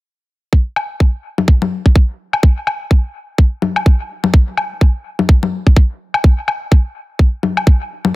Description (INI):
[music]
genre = minimal techno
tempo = 126 BPM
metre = 4/4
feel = swing 59% on 16ths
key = none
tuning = none
[part]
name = electronic kick drum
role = drums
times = 0.5-7.8 s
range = none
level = -9 LUFS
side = equal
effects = none
[part]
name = woodblock and congas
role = percussion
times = 0.8-8.1 s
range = none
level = -18 LUFS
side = left 4 dB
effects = overdrive, dub echo
[sound]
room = digital ambience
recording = dense, heavily limited modern master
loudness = -12 LUFS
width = side -19 dB against mid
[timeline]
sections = 0.5-8.2 A section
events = none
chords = none